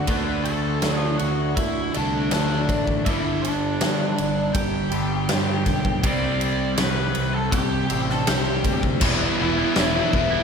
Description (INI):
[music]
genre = quiet-loud alternative rock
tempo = 81 BPM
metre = 4/4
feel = straight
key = E minor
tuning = A4 = 440 Hz
[part]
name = octave-fuzz lead guitar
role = melody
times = 0.0-10.4 s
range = D4 to D6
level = -27 LUFS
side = left 1 dB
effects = distortion, slapback echo
[part]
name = electric guitar through a small old amp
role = arpeggios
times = 0.0-3.1 s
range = D3 to F#4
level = -32 LUFS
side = right 2 dB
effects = none
[part]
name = crunchy overdriven guitar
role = riff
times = 0.0-10.4 s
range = G2 to E4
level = -27 LUFS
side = right 8 dB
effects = none
[part]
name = overdriven semi-hollow guitar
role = riff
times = 0.0-10.4 s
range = G2 to E4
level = -28 LUFS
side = left 9 dB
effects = phaser, slapback echo
[part]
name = growling fingered electric bass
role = bass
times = 0.0-10.4 s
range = E1 to G2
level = -28 LUFS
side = equal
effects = overdrive
[part]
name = huge arena drum kit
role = drums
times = 0.1-10.3 s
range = crash cymbal, kick drum, ride cymbal, snare drum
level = -25 LUFS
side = equal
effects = none
[part]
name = high-gain distorted guitar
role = riff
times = 9.0-10.4 s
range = E2 to E3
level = -27 LUFS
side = right 1 dB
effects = distortion
[sound]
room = moderate concert hall reverb, RT60 2.3 s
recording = big arena sound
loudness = -20 LUFS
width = side -6 dB against mid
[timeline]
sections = 0.0-9.0 A section; 9.0-10.4 B section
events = none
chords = 0.0 D; 3.1 G5; 6.0 Csus2; 9.0 Em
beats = | 0.09 0.84 1.58 2.32 | 3.07 3.81 4.55 5.30 | 6.04 6.79 7.53 8.27 | 9.02 9.76